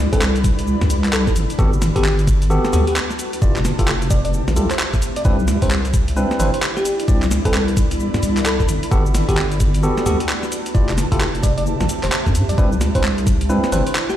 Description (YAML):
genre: UK garage, two-step garage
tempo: 131 BPM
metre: 4/4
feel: swing 62% on 16ths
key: C major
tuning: A4 = 445 Hz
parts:
  - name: ethereal airy pad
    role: sustained chords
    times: 0.0-14.2 s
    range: A3 to B4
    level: -30 LUFS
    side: left 1 dB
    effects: ensemble chorus, built-in reverb, sidechain pumping
  - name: deep soft wobble bass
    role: bass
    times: 0.0-13.8 s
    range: F1 to F2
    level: -18 LUFS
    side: equal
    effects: chorus
  - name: ethereal airy pad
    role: texture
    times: 0.0-14.2 s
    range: E4 to B5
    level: -28 LUFS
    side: equal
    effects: ensemble chorus, built-in reverb, sidechain pumping
  - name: bell-like FM electric piano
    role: melody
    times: 0.1-14.2 s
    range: G4 to D5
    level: -26 LUFS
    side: equal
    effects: chorus, dub echo
  - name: barky tine electric piano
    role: stabs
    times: 0.1-13.8 s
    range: B3 to D5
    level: -25 LUFS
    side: equal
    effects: dub echo
  - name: breakbeat sampler-style drum kit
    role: drums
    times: 0.1-14.2 s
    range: cabasa, handclaps, hi-hat, snare drum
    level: -24 LUFS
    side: equal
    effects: none
  - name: electronic kick drum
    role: drums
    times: 0.1-13.4 s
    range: none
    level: -17 LUFS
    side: equal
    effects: none
room: little or no reverb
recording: played on a big sound system in a bare room, large studio reverb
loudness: -15 LUFS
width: side -12 dB against mid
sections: 0.0-14.2 A section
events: none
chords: 0.0 Cmaj9; 1.6 Gmaj9; 3.4 Fmaj9; 5.3 Cmaj9; 8.9 Gmaj9; 10.7 Fmaj9; 12.6 Cmaj9